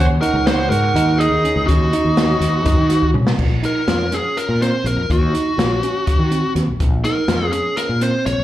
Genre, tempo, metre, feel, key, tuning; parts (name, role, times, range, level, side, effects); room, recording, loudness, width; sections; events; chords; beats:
progressive instrumental, band music in an uneven meter; 246 BPM (eighths); 7/8; straight; Eb dorian; A4 = 441 Hz
fuzz lead guitar; melody; 0.0-8.4 s; Gb4 to Db5; -20 LUFS; left 1 dB; distortion, slapback echo
bright alto saxophone; second line; 0.0-3.1 s; Eb4 to Gb4; -22 LUFS; right 3 dB; slapback echo
tine electric piano; arpeggios; 0.0-8.4 s; C4 to F4; -23 LUFS; right 2 dB; overdrive, slapback echo, ping-pong delay
fretless electric bass; bass; 0.0-8.4 s; Bb1 to Eb3; -19 LUFS; equal
open jazz drum kit; drums; 0.2-8.4 s; crash cymbal, hi-hat, kick drum, snare drum, toms; -20 LUFS; equal
light reverb; live gig heard through the venue's PA, club reverb; -15 LUFS; side -13 dB against mid
0.0-3.4 A section; 3.4-8.4 B section
drum fill 3.0-3.4
0.0 Ebm7; 1.7 Ebm; 3.4 Bbm; 5.1 Ebm; 6.8 Bbm
0.22 0.47 0.71 0.95 1.20 1.44 | 1.68 1.93 2.17 2.41 2.66 2.90 3.14 | 3.39 3.63 3.87 4.12 4.36 4.61 4.85 | 5.09 5.34 5.58 5.82 6.07 6.31 6.55 | 6.80 7.04 7.29 7.53 7.77 8.02 8.26